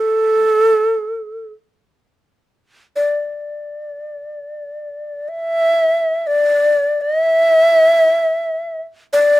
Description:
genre	japanese traditional, Japanese chamber music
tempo	free time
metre	none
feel	none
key	unclear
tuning	A4 = 439 Hz
part	breathy long shakuhachi	solo	0.0-9.4 s	A4 to E5	-14 LUFS	equal	none
room	light reverb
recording	close, detailed microphones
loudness	-13 LUFS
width	side -16 dB against mid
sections	0.0-1.8 A section; 1.8-9.4 A section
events	none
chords	none

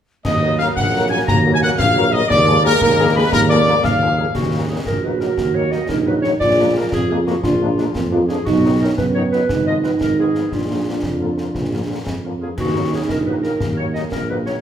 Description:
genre	military-style march for wind band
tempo	117 BPM (dotted quarters)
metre	6/8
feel	straight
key	Eb minor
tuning	A4 = 440 Hz
part	wooden piccolo	second line	0.2-4.4 s	Bb5 to Bb6	-22 LUFS	left 4 dB	none
part	concert snare drum, clash cymbals and concert bass drum	drums	0.2-14.6 s	none	-24 LUFS	left 1 dB	none
part	warm trumpet section	melody	0.3-14.5 s	D4 to Bb5	-22 LUFS	equal	none
part	dark woodwind section	second line	0.3-14.5 s	F4 to Bb5	-22 LUFS	left 2 dB	none
part	dark trombone section	sustained chords	0.3-4.2 s	Gb3 to Bb3	-23 LUFS	right 3 dB	none
part	mellow tuba	bass	0.3-14.6 s	Ab1 to F#2	-21 LUFS	right 2 dB	none
part	mellow French horn section	accompaniment	0.4-14.5 s	D3 to Bb4	-26 LUFS	left 5 dB	none
part	dark euphonium	second line	4.9-14.6 s	Bb3 to Gb4	-21 LUFS	right 4 dB	none
room	moderate recital hall reverb, RT60 1.4 s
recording	minimal, uncompressed stereo recording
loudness	-15 LUFS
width	side -9 dB against mid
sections	0.2-4.4 A section; 4.4-14.6 B section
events	none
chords	0.2 Ebm; 2.3 Bb7/Eb; 4.4 Ebm; 6.4 Bb7; 8.5 B; 9.5 Fm7b5/Ab; 10.5 Bb; 12.6 Ebm

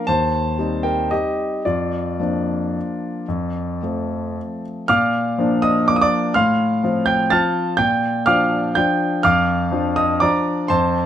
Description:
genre	classical, piano waltz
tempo	106-131 BPM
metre	3/4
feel	rubato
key	Bb major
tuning	A4 = 441 Hz
part	warm concert grand piano	solo	0.0-11.1 s	Eb2 to A6	-17 LUFS	equal	none
room	light reverb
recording	none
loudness	-17 LUFS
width	side -10 dB against mid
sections	0.0-4.9 A section; 4.9-11.1 B section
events	none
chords	0.1 Cm/Eb; 1.7 Bb/F; 3.3 F; 4.9 Bb; 6.4 F/A; 7.8 Bb

